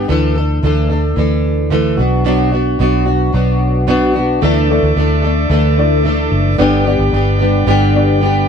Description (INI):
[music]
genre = acoustic pop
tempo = 111 BPM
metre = 4/4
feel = straight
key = D major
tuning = A4 = 444 Hz
[part]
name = fingerpicked plugged-in steel-string acoustic guitar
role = accompaniment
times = 0.0-8.5 s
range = G2 to A4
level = -14 LUFS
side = equal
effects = double-tracked left and right
[part]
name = vintage muted fingered electric bass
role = bass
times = 0.0-8.4 s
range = F#1 to D2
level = -15 LUFS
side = equal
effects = none
[part]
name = dark upright piano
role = accompaniment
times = 4.4-8.5 s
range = A3 to D5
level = -20 LUFS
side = left 7 dB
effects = none
[part]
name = bright tonewheel organ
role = sustained chords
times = 4.4-8.5 s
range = A4 to D6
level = -22 LUFS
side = right 2 dB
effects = overdrive, stopped rotary speaker
[sound]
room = small room ambience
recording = dry, close 1970s-style studio recording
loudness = -11 LUFS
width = side -7 dB against mid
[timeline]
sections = 0.0-4.4 A section; 4.4-8.5 B section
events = none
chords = 0.1 Dsus2; 2.0 Bm; 4.4 Dsus2; 6.6 G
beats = | 0.09 0.64 1.18 1.72 | 2.26 2.80 3.34 3.88 | 4.42 4.97 5.51 6.05 | 6.59 7.13 7.67 8.21